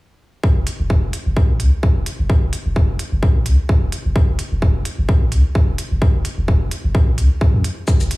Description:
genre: minimal techno.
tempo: 129 BPM.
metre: 4/4.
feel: swing 55% on 16ths.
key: F# minor.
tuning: A4 = 440 Hz.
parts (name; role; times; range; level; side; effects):
electronic kick drum; drums; 0.4-8.0 s; none; -16 LUFS; equal; none.
punchy sub bass; bass; 0.6-8.1 s; E1 to F#2; -17 LUFS; equal; sidechain pumping.
electronic hi-hat and shaker; drums; 0.7-8.2 s; none; -29 LUFS; right 2 dB; none.
room: little or no reverb.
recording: small room reverb.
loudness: -15 LUFS.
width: side -21 dB against mid.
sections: 0.4-8.2 A section.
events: none.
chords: none.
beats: | 0.43 0.90 1.36 1.83 | 2.30 2.76 3.23 3.69 | 4.16 4.62 5.09 5.55 | 6.02 6.48 6.95 7.41 | 7.88.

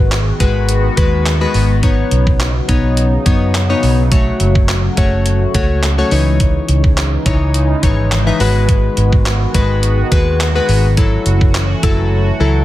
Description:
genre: dance-pop.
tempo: 105 BPM.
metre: 4/4.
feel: straight.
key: F# dorian.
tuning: A4 = 439 Hz.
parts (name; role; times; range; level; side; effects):
chorused retro synth keys; accompaniment; 0.0-12.6 s; E3 to E5; -18 LUFS; left 4 dB; none.
sweeping resonant pad; sustained chords; 0.0-12.6 s; C#3 to F#4; -22 LUFS; left 1 dB; chorus, sidechain pumping.
vintage muted fingered electric bass; bass; 0.0-12.6 s; F#1 to F#2; -14 LUFS; equal; sidechain pumping.
detuned 8-bit digital drum machine; drums; 0.1-12.0 s; handclaps, hi-hat, kick drum; -16 LUFS; equal; none.
room: little or no reverb.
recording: none.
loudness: -11 LUFS.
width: side -14 dB against mid.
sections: 0.0-12.6 A section.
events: silent gap 12.1-12.6.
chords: 0.0 G#m7; 1.8 Badd9; 4.1 F#m; 6.1 C#madd9; 8.4 G#m7; 11.0 F#m7.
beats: 0.12 0.69 1.26 | 1.83 2.40 2.97 3.54 | 4.12 4.69 5.26 5.83 | 6.40 6.97 7.54 8.12 | 8.69 9.26 9.83 10.40 | 10.97 11.54 12.12.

